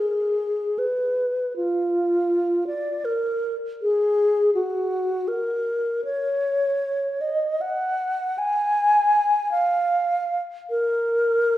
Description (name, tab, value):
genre	classical, free, expressive piece for unaccompanied alto flute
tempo	79 BPM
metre	3/4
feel	uneven beats, rubato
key	unclear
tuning	A4 = 440 Hz
part	mellow wooden-headed alto flute	solo	0.0-11.6 s	F4 to Ab5	-20 LUFS	equal	none
room	wet recital hall reverb, RT60 1.6 s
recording	heard from further back in the room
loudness	-21 LUFS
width	side -14 dB against mid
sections	0.0-11.6 A section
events	none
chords	none